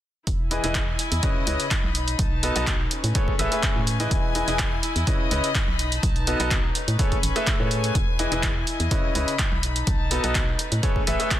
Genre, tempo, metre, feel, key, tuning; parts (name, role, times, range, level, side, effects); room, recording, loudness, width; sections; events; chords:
piano house; 125 BPM; 4/4; straight; E major; A4 = 440 Hz
organ-like FM bass; bass; 0.3-11.2 s; E1 to A2; -27 LUFS; equal; sidechain pumping
electronic kick drum; drums; 0.3-11.4 s; -25 LUFS; equal
punchy analog drum machine; drums; 0.3-11.4 s; handclaps, hi-hat; -27 LUFS; right 1 dB
rich chamber string section; texture; 0.3-11.4 s; C#4 to B5; -30 LUFS; left 3 dB; sidechain pumping
bright baby grand piano; riff; 0.5-11.4 s; C#3 to E5; -27 LUFS; left 1 dB; sidechain pumping, dub echo
studio reverb; dense, heavily limited modern master; -21 LUFS; side -12 dB against mid
0.3-11.4 A section
0.3 Emaj7; 1.2 C#m9; 2.0 B7; 2.9 Amaj9; 4.1 Emaj7; 5.1 C#m9; 5.8 B7; 6.8 Amaj9; 8.0 Emaj7; 8.9 C#m9; 9.6 B7; 10.6 Amaj9